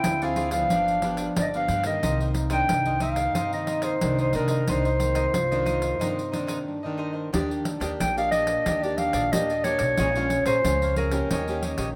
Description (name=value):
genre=samba and choro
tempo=90 BPM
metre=4/4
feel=straight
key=C minor, Eb major from 7.3 s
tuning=A4 = 440 Hz
part: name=mellow clarinet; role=melody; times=0.0-11.6 s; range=Bb4 to G5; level=-27 LUFS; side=equal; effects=none
part: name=growling trombone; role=second line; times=0.0-11.7 s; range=Db4 to F4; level=-36 LUFS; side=equal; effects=none
part: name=nylon-string guitar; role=accompaniment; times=0.0-11.9 s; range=F2 to Ab4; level=-34 LUFS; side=equal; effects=none
part: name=upright bass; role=bass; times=0.0-11.9 s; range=G1 to C3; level=-32 LUFS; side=equal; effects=none
part: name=pandeiro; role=percussion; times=0.0-12.0 s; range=none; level=-34 LUFS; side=equal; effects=none
part: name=cavaquinho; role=accompaniment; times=0.2-11.9 s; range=D4 to Bb5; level=-39 LUFS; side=equal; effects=none
room=moderate lush hall reverb, RT60 2.7 s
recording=rough home demo mix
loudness=-25 LUFS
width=mono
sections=0.0-7.3 A section; 7.3-12.0 B section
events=break 6.7-7.3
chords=0.0 Dm7b5; 0.7 G7; 2.0 Cm9; 7.3 Ebmaj7; 10.0 Bbm7; 11.3 Eb7